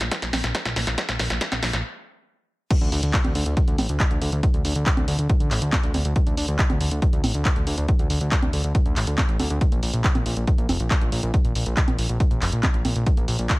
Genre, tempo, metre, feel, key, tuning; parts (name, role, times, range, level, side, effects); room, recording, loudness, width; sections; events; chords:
uplifting trance; 139 BPM; 4/4; straight; D minor; A4 = 440 Hz
fat analog bass; bass; 0.0-13.5 s; F1 to D2; -24 LUFS; equal; sidechain pumping
punchy analog drum machine; drums; 0.0-13.6 s; congas, crash cymbal, handclaps, hi-hat, snare drum; -26 LUFS; equal; high-pass filter on snare, sidechain pumping on hats, high-pass filter on hats, sidechain pumping on perc, high-pass filter on perc, sidechain pumping on cymbals, high-pass filter on cymbals
electronic kick drum; drums; 0.1-13.6 s; -21 LUFS; equal; high-pass filter on kick
digital ambience; -20 LUFS; side -22 dB against mid
0.0-2.7 A section; 2.7-13.6 B section
build-up 0.0-2.7; drum fill 0.0-1.8; stop 1.8-2.7; drop 2.7-13.6